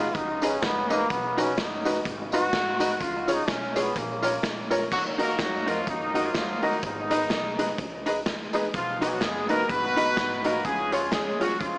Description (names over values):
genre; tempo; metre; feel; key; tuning
ska; 126 BPM; 4/4; swing 57% on 8ths; Eb minor; A4 = 440 Hz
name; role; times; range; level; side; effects
bright trombone; melody; 0.0-4.4 s; Bb3 to F#4; -28 LUFS; equal; tape echo
vintage hollow-body jazz guitar; accompaniment; 0.0-11.7 s; Eb4 to Db5; -32 LUFS; right 1 dB; none
dark upright piano; stabs; 0.0-11.5 s; Db4 to Eb5; -29 LUFS; left 1 dB; tape echo
upright bass; bass; 0.0-11.8 s; Gb1 to Gb2; -42 LUFS; equal; none
raw garage drum kit; drums; 0.1-11.7 s; crash cymbal, hi-hat, kick drum, snare drum; -30 LUFS; equal; tape echo
tambourine; percussion; 0.4-4.8 s; none; -42 LUFS; left 1 dB; none
clear horn section; melody; 4.9-11.8 s; Eb3 to B4; -26 LUFS; equal; tape echo
room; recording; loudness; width
light reverb, studio reverb; small speaker sound; -23 LUFS; side -24 dB against mid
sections
0.0-4.9 A section; 4.9-11.8 B section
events
trombone solo 0.0-4.9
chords
0.0 Abm; 1.1 B; 3.0 Db; 4.0 Bbm; 4.9 Ebm; 6.8 Abm; 8.7 B; 10.7 Db